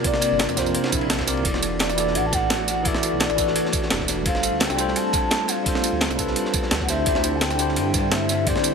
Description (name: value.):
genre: liquid drum and bass.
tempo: 171 BPM.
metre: 4/4.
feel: straight.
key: E phrygian.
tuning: A4 = 439 Hz.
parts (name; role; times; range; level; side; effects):
hollow clarinet-like synth lead; melody; 0.0-8.7 s; C5 to A5; -26 LUFS; left 2 dB; wide subtle chorus, tape echo.
bell-like tine electric piano; accompaniment; 0.0-8.7 s; C3 to D5; -26 LUFS; equal; fast stereo tremolo, tape echo.
ethereal airy pad; sustained chords; 0.0-8.7 s; G3 to F#4; -29 LUFS; right 2 dB; ensemble chorus, built-in reverb, sidechain pumping.
breakbeat sampler-style drum kit; drums; 0.0-8.7 s; hi-hat, snare drum, tambourine; -24 LUFS; right 2 dB; none.
crunchy breakbeat drum kit; drums; 0.0-8.7 s; ride cymbal, snare drum; -31 LUFS; equal; high-pass filter on cymbals, high-pass filter on snare, high-pass filter on room.
electronic kick drum; drums; 0.0-8.5 s; none; -28 LUFS; equal; none.
dark detuned saw bass; bass; 0.3-8.5 s; E1 to G2; -29 LUFS; equal; none.
swell; sound effects; 0.9-1.4 s; none; -33 LUFS; right 5 dB; none.
room: light reverb.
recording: none.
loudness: -19 LUFS.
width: side -5 dB against mid.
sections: 0.0-8.7 A section.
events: swell 0.9-1.4.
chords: 0.0 C9sus4; 1.4 E9sus4; 4.3 G9sus4; 6.9 D9sus4.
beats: | 0.05 0.40 0.75 1.10 | 1.45 1.80 2.15 2.50 | 2.85 3.20 3.55 3.90 | 4.26 4.61 4.96 5.31 | 5.66 6.01 6.36 6.71 | 7.06 7.41 7.76 8.12 | 8.47.